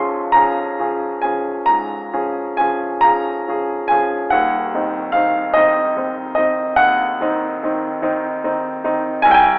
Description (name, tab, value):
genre	classical, romantic nocturne for solo piano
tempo	44-50 BPM (dotted quarters)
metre	12/8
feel	rubato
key	unclear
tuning	A4 = 440 Hz
part	warm grand piano	solo	0.0-9.6 s	Eb1 to Db6	-15 LUFS	equal	none
room	wet recital hall reverb, RT60 1.4 s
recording	telephone sound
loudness	-15 LUFS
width	side -23 dB against mid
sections	0.0-9.6 A section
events	none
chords	0.0 Db; 4.3 Cdim/Eb